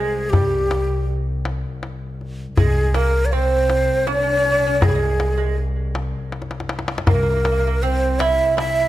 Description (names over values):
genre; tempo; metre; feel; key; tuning
Persian modal ensemble; 80 BPM; 3/4; straight; C dastgah homayun; A4 = 440 Hz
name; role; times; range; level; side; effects
breathy ney; melody; 0.0-8.9 s; G4 to E5; -20 LUFS; equal; none
lute; second line; 0.0-8.9 s; G3 to E4; -25 LUFS; right 5 dB; tape echo
dark double bass; drone; 0.0-8.9 s; C2; -29 LUFS; left 2 dB; none
upright bass; bass; 0.3-8.4 s; C2; -21 LUFS; equal; none
tombak; percussion; 0.3-8.8 s; none; -20 LUFS; left 2 dB; none
room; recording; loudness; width
light reverb; close, detailed microphones; -17 LUFS; side -14 dB against mid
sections
0.0-8.9 A section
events
drum fill 6.3-7.1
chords
none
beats
| 0.33 1.08 1.83 | 2.58 3.33 4.08 | 4.83 5.58 6.33 | 7.08 7.83 8.58